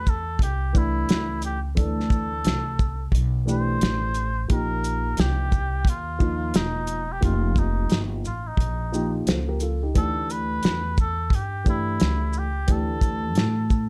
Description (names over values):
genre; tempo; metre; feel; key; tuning
hip hop, jazz-hop; 88 BPM; 4/4; swing 62% on 16ths; unclear; A4 = 441 Hz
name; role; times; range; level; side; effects
trumpet with cup mute; melody; 0.0-13.9 s; Eb4 to C5; -32 LUFS; equal; none
dark concert grand piano; accompaniment; 0.0-13.7 s; E3 to C5; -32 LUFS; equal; none
upright bass; bass; 0.0-13.9 s; E1 to A2; -29 LUFS; equal; none
cloth-damped thuddy drum kit; drums; 0.1-13.9 s; hi-hat, kick drum, shaker, snare drum; -24 LUFS; equal; none
room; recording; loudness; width
little or no reverb; dark, warm production; -24 LUFS; mono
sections
0.0-13.9 A section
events
none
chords
0.0 D9sus4; 4.5 Bbsus24; 7.2 F9sus4; 10.0 Dsus4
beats
0.41 1.09 | 1.77 2.45 3.14 3.82 | 4.50 5.18 5.86 6.54 | 7.23 7.91 8.59 9.27 | 9.95 10.64 11.32 12.00 | 12.68 13.36